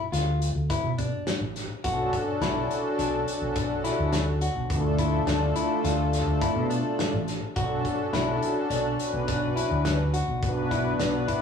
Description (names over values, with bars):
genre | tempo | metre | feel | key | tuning
progressive instrumental, band music in an uneven meter | 105 BPM | 5/4 | straight | B minor | A4 = 440 Hz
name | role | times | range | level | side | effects
clean electric guitar | arpeggios | 0.0-11.4 s | D4 to F#4 | -30 LUFS | left 4 dB | none
mellow fretless electric bass | bass | 0.1-11.2 s | A1 to B2 | -28 LUFS | equal | none
loose indie drum kit | drums | 0.1-11.4 s | hi-hat, kick drum, snare drum | -32 LUFS | left 1 dB | none
warm analog pad | accompaniment | 1.8-11.4 s | A3 to B4 | -28 LUFS | equal | chorus
room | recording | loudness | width
wet booth ambience, RT60 0.2 s | rough rehearsal-room recording, small room ambience | -24 LUFS | side -7 dB against mid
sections
0.0-11.4 A section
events
none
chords
0.0 Dm; 1.8 Bm7; 4.7 Dm; 7.6 Bm7; 10.4 Bm